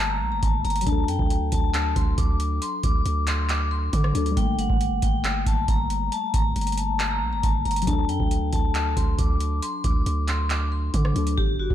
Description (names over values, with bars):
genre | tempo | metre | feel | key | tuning
hip hop, trap | 137 BPM | 4/4 | half-time | unclear | A4 = 439 Hz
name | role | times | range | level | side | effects
vibraphone with hard mallets | melody | 0.0-11.7 s | F#4 to D6 | -28 LUFS | left 4 dB | low-pass filter, diffuse ambient delay
muted felt-like synth keys | accompaniment | 0.0-11.4 s | F#3 to A4 | -31 LUFS | left 5 dB | chorus, low-pass filter
long sustained 808-style bass | bass | 0.0-11.7 s | G1 to D3 | -26 LUFS | right 1 dB | none
booming analog drum machine | drums | 0.4-11.7 s | handclaps, hi-hat, kick drum, rim click | -25 LUFS | right 1 dB | none
room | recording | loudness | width
light reverb | none | -21 LUFS | side -11 dB against mid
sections
0.0-11.4 A section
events
hi-hats muted 11.4-11.7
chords
0.0 Gmadd9; 0.9 D; 4.4 Gmadd9; 7.9 D